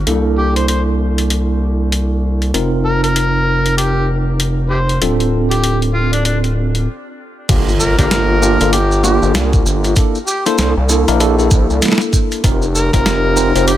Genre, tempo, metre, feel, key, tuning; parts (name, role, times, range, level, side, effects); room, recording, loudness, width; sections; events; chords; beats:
glitch hop; 97 BPM; 4/4; swing 60% on 16ths; G minor; A4 = 440 Hz
tine electric piano; stabs; 0.0-13.7 s; Bb3 to C5; -18 LUFS; equal; medium stereo tremolo, sidechain pumping, low-pass filter, dub echo
gritty driven synth bass; bass; 0.0-13.8 s; D1 to C2; -16 LUFS; equal
boom bap sampler-style drum kit; drums; 0.1-13.8 s; crash cymbal, hi-hat, snare drum; -20 LUFS; left 1 dB
overdriven harmonica; melody; 0.4-13.8 s; D4 to C5; -20 LUFS; equal; dub echo
electronic kick drum; drums; 7.5-13.0 s; -14 LUFS; equal
maracas; percussion; 7.5-13.8 s; -23 LUFS; right 1 dB
impact; sound effects; 7.5-10.0 s; -25 LUFS; equal
little or no reverb; -12 LUFS; side -12 dB against mid
0.0-7.5 A section; 7.5-13.8 B section
stop 6.9-7.5; drop 7.5-13.8; impact 7.5-10.0
0.1 C13; 2.5 F7sus4; 5.0 Dm7; 7.5 Gm7; 10.0 C13; 12.4 F7sus4
| 0.07 0.69 1.31 1.92 | 2.54 3.16 3.78 4.40 | 5.02 5.64 6.25 6.87 | 7.49 8.11 8.73 9.35 | 9.97 10.58 11.20 11.82 | 12.44 13.06 13.68